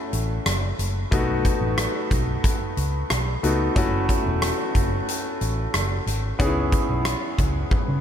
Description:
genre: 1980s-style pop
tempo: 91 BPM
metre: 4/4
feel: straight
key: F# dorian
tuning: A4 = 441 Hz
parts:
  - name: bright concert grand piano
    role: accompaniment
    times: 0.0-8.0 s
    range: A3 to G#4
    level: -26 LUFS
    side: left 2 dB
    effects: none
  - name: vintage muted fingered electric bass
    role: bass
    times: 0.1-8.0 s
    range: E1 to C#3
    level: -25 LUFS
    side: equal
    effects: none
  - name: huge arena drum kit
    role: drums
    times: 0.1-7.9 s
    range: hi-hat, kick drum, rim click, toms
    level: -24 LUFS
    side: equal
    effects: none
room: moderate huge ambient reverb, RT60 7.9 s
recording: dreamy mix soaked in reverb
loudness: -21 LUFS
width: side -9 dB against mid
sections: 0.0-8.0 A section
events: drum fill 7.7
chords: 0.0 F#m7; 1.1 B7; 3.8 F#m7; 6.4 C#m7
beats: 0.46 | 1.12 1.78 2.44 3.10 | 3.76 4.42 5.08 5.74 | 6.40 7.06 7.72

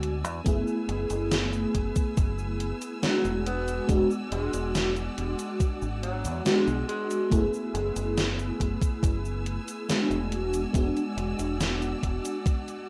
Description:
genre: vaporwave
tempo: 70 BPM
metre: 4/4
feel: straight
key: F# minor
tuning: A4 = 445 Hz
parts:
  - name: FM electric piano with soft pad layer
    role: accompaniment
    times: 0.0-12.9 s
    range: G#3 to G#4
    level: -31 LUFS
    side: equal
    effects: ensemble chorus, tape echo
  - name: rich symphonic string section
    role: sustained chords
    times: 0.0-12.9 s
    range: B4 to E6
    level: -43 LUFS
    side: equal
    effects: none
  - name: deep dub fingered electric bass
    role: bass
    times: 0.0-12.2 s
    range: E1 to E2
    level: -34 LUFS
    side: equal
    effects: tube saturation
  - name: gated 80s digital drum machine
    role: drums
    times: 0.0-12.8 s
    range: cabasa, hi-hat, snare drum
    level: -34 LUFS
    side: equal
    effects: gated reverb, gated reverb snare, overdrive
  - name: electronic kick drum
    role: drums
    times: 0.5-12.6 s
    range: none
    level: -28 LUFS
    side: equal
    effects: overdrive
  - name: mellow tenor saxophone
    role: melody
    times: 3.0-7.4 s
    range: F#3 to B3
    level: -39 LUFS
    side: equal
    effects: tape echo
room: wet studio reverb, RT60 0.6 s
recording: rough home demo mix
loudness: -28 LUFS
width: mono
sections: 0.0-12.9 A section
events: none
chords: 0.5 F#m11; 3.5 E9; 7.3 F#m11; 10.3 E9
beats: | 0.46 1.32 2.17 3.03 | 3.89 4.75 5.60 6.46 | 7.32 8.17 9.03 9.89 | 10.74 11.60 12.46

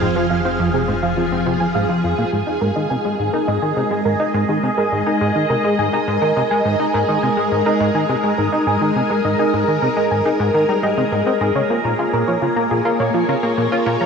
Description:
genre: ambient, sequencer-driven space music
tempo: 104 BPM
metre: 4/4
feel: straight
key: Ab major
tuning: A4 = 440 Hz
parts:
  - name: phased string machine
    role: sustained chords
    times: 0.0-14.1 s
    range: F3 to F5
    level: -19 LUFS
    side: equal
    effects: ensemble chorus, phaser, shimmer reverb
  - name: soft round pluck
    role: arpeggios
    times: 0.0-14.1 s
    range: F4 to Bb5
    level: -22 LUFS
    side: moving between left 2 dB and right 4 dB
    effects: chorus, auto-pan, ping-pong delay, shimmer reverb
  - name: plucky analog bass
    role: riff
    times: 0.0-14.1 s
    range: F2 to F4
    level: -20 LUFS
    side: equal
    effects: lush chorus, ping-pong delay, shimmer reverb
  - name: fat analog bass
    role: bass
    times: 0.0-2.3 s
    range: F1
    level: -30 LUFS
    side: equal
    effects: none
room: wet huge ambient reverb, RT60 8.6 s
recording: cassette tape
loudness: -16 LUFS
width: side -6 dB against mid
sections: 0.0-2.3 A section; 2.3-14.1 B section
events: none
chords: 0.0 Fm; 2.3 Absus2; 11.6 Bbm7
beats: | 0.02 0.59 1.17 1.75 | 2.32 2.90 3.48 4.05 | 4.63 5.21 5.79 6.36 | 6.94 7.52 8.09 8.67 | 9.25 9.82 10.40 10.98 | 11.55 12.13 12.71 13.29 | 13.86

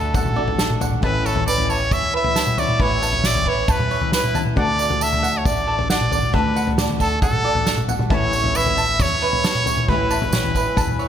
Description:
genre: indie folk with a building arrangement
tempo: 136 BPM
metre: 4/4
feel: straight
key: D major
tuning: A4 = 441 Hz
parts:
  - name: brilliant trumpet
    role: melody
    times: 0.0-11.1 s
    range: A4 to E5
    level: -22 LUFS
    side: equal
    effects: ping-pong delay
  - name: felt-muted upright piano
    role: accompaniment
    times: 0.0-11.1 s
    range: A1 to D5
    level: -32 LUFS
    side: left 4 dB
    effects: none
  - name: picked twelve-string acoustic guitar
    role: accompaniment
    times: 0.0-11.1 s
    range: A2 to F#4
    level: -29 LUFS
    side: left 5 dB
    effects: lush chorus
  - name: bluegrass banjo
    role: arpeggios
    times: 0.0-11.1 s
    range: A4 to A5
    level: -25 LUFS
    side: right 5 dB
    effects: none
  - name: upright bass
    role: bass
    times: 0.0-11.1 s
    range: A1 to E2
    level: -27 LUFS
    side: equal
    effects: none
  - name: unplugged drum kit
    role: drums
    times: 0.1-11.0 s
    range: kick drum, snare drum, toms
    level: -21 LUFS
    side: left 1 dB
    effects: none
  - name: tambourine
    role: percussion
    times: 0.1-11.0 s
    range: none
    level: -32 LUFS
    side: right 7 dB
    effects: none
room: moderate plate reverb, RT60 2.1 s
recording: bright 1980s-style digital production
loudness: -17 LUFS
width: side -9 dB against mid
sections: 0.0-11.1 A section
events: none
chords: 0.0 D; 1.0 Aadd9; 4.6 D; 8.1 Aadd9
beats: 0.14 0.59 | 1.03 1.47 1.91 2.36 | 2.80 3.24 3.68 4.13 | 4.57 5.01 5.45 5.90 | 6.34 6.78 7.22 7.67 | 8.11 8.55 8.99 9.44 | 9.88 10.32 10.77

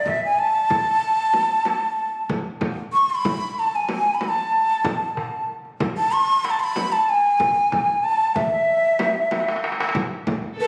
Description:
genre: Turkish makam ensemble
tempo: 94 BPM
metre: 4/4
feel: straight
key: unclear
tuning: A4 = 441 Hz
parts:
  - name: breathy bright ney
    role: melody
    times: 0.0-10.7 s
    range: B4 to C#6-41c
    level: -21 LUFS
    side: equal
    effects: slapback echo
  - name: darbuka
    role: percussion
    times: 0.1-10.5 s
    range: none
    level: -33 LUFS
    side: equal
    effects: none
  - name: frame drum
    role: percussion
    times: 0.1-10.4 s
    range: none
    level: -31 LUFS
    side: equal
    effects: none
  - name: rich studio violin section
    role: second line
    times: 10.6-10.7 s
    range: A4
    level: -27 LUFS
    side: equal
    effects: none
room: moderate concert hall reverb, RT60 2.4 s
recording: recorded on a phone in the room, studio reverb, compression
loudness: -21 LUFS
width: mono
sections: 0.0-10.0 A section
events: drum fill 9.3-10.0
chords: none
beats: 0.38 1.02 1.66 | 2.30 2.94 3.57 4.21 | 4.85 5.49 6.12 6.76 | 7.40 8.04 8.68 9.32 | 9.96 10.59

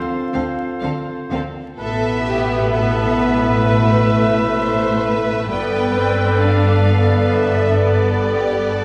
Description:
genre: cinematic, emotional film score for orchestra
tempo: 65 BPM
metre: 4/4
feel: rubato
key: A minor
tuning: A4 = 441 Hz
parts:
  - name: flute section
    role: second line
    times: 0.0-8.8 s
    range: D5 to F5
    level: -29 LUFS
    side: equal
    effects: none
  - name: warm clarinet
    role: second line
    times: 0.0-8.8 s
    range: A4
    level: -29 LUFS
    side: equal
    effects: none
  - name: warm cor anglais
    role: second line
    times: 0.0-8.8 s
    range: B4 to C5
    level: -27 LUFS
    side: equal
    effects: none
  - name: dark French horn section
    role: sustained chords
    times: 0.0-8.8 s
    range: B2 to B4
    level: -26 LUFS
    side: equal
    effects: none
  - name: rich symphonic violin section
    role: melody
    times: 0.3-8.8 s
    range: D5 to G5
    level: -28 LUFS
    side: equal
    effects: none
  - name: rich symphonic viola section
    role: accompaniment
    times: 0.3-8.8 s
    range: A3 to D4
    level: -26 LUFS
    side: equal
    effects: none
  - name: clear studio double bass section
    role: bass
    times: 0.3-8.8 s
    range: G1 to D2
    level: -24 LUFS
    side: equal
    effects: none
  - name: warm symphonic cello section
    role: bass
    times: 0.3-8.8 s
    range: G2 to D3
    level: -26 LUFS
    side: equal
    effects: none
  - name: warm symphonic violin section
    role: second line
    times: 0.4-8.8 s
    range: G4 to C5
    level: -29 LUFS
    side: equal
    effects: none
room: wet scoring stage reverb, RT60 1.6 s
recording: heard from further back in the room, vinyl crackle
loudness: -17 LUFS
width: mono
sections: 0.0-1.8 A section; 1.8-8.8 B section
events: none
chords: 0.0 Dm7; 1.8 Asus2; 5.5 Gadd9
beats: 0.82 | 1.78 2.71 3.64 4.56 | 5.49 6.41 7.33 8.25

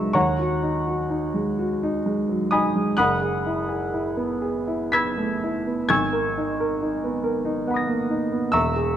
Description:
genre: classical, impressionist solo piano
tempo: 57-70 BPM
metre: 3/4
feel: rubato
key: unclear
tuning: A4 = 436 Hz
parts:
  - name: warm grand piano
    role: solo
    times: 0.0-9.0 s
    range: E1 to B6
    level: -21 LUFS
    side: equal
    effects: none
room: moderate recital hall reverb, RT60 1.5 s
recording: close, detailed microphones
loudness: -21 LUFS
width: side -10 dB against mid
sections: 0.0-9.0 A section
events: none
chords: 0.2 D#m7; 3.0 F#m11; 5.9 G#m11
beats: | 0.15 1.09 2.03 | 2.95 3.88 4.90 | 5.86 6.77 7.63 | 8.54

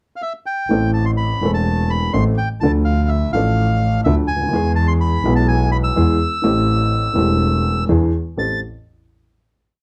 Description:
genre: tango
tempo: 125 BPM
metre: 4/4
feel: rubato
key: A minor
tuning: A4 = 440 Hz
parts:
  - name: bandoneon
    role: melody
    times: 0.2-8.6 s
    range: E5 to A6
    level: -25 LUFS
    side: equal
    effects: none
  - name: warm upright piano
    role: accompaniment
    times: 0.7-8.6 s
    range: E1 to A4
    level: -21 LUFS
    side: equal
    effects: none
  - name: clear double bass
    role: bass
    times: 0.7-8.6 s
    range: E1 to E2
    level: -21 LUFS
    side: equal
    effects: none
room: moderate studio ambience, RT60 0.5 s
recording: dark, warm production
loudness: -18 LUFS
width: mono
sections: 0.0-0.7 pickup bar; 0.7-8.4 A section; 8.4-9.8 final chord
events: none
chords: 0.0 N.C.; 0.7 Am; 2.6 Dm; 4.5 E; 6.4 Am7; 7.9 E7; 8.4 Am7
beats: 0.22 | 0.70 1.18 1.66 2.14 | 2.62 3.10 3.58 4.06 | 4.53 5.01 5.49 5.96 | 6.44 6.92 7.40 7.89 | 8.37

